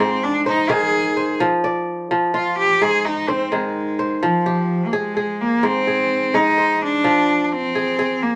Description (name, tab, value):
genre	west african traditional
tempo	85 BPM (dotted quarters)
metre	12/8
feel	straight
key	F dorian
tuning	A4 = 440 Hz
part	rich cello	melody	0.0-8.4 s	F3 to Ab4	-21 LUFS	equal	none
part	kora	arpeggios	0.0-8.4 s	Ab2 to D5	-23 LUFS	equal	none
room	moderate studio reverb, RT60 0.6 s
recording	none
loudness	-19 LUFS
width	mono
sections	0.0-4.2 A section; 4.2-8.4 B section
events	cello solo 0.0-4.2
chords	0.0 Ab; 1.4 F5; 2.8 Ab; 4.2 Fm; 5.6 Ab; 7.0 Fm